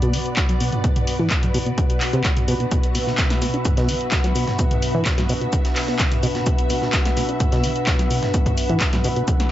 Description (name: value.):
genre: acid house.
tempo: 128 BPM.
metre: 4/4.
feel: straight.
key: B minor.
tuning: A4 = 441 Hz.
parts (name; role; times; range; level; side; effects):
string machine, full ensemble; sustained chords; 0.0-9.5 s; B2 to E5; -27 LUFS; equal; ensemble chorus, sidechain pumping.
deep acid bass; riff; 0.0-9.3 s; B2 to D4; -25 LUFS; equal; sidechain pumping, tape echo.
punchy analog drum machine; drums; 0.0-9.5 s; handclaps, hi-hat, snare drum, toms; -25 LUFS; equal; none.
warbly tape-like pad; texture; 0.0-9.5 s; D4 to B5; -28 LUFS; left 1 dB; chorus, built-in reverb, sidechain pumping.
electronic kick drum; drums; 0.4-9.4 s; none; -21 LUFS; equal; none.
breakbeat sampler-style drum kit; drums; 2.7-9.4 s; hi-hat, shaker, snare drum; -34 LUFS; equal; high-pass filter on perc, high-pass filter on snare, high-pass filter on hats.
room: light reverb.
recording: nothing above 7.8 kHz.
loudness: -18 LUFS.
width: side -13 dB against mid.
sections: 0.0-9.5 A section.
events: filter sweep on acid bass 0.0-9.5; drum fill 9.3.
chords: 0.0 Bm.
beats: 0.37 | 0.84 1.31 1.78 2.25 | 2.71 3.18 3.65 4.12 | 4.59 5.06 5.53 6.00 | 6.46 6.93 7.40 7.87 | 8.34 8.81 9.28.